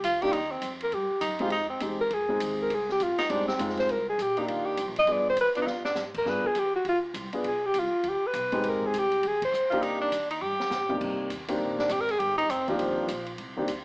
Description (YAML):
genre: jazz, small-group swing and bop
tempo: 202 BPM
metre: 4/4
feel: swing 62% on 8ths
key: unclear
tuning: A4 = 440 Hz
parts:
  - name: breathy alto saxophone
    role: melody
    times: 0.0-9.8 s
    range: F4 to Eb5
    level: -25 LUFS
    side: equal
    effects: none
  - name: breathy tenor saxophone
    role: second line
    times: 0.0-6.0, 9.7-13.4 s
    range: F3 to Bb4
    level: -28 LUFS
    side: equal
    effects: none
  - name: upright bass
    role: bass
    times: 0.0-13.8 s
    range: F1 to Ab2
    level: -42 LUFS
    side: equal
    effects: none
  - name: open jazz drum kit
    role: drums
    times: 0.0-13.8 s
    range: crash cymbal, hi-hat, kick drum, ride cymbal, snare drum, toms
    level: -38 LUFS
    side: equal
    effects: none
  - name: warm concert grand piano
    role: accompaniment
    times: 0.2-13.7 s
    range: C3 to B4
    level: -30 LUFS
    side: equal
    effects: none
room: moderate large studio reverb, RT60 0.9 s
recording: small speaker sound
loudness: -25 LUFS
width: side -27 dB against mid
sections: 0.0-11.0 A section; 11.0-13.8 B section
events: drum fill 5.7, 10.4-11.0; band accent 9.4; tenor saxophone solo 11.0-13.8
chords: 0.0 Cm (rootless); 1.5 Fm7; 3.9 Cm7; 5.1 G7b9; 8.6 Abmaj7#11; 9.8 Cm7; 10.4 G5; 11.0 F7(no3)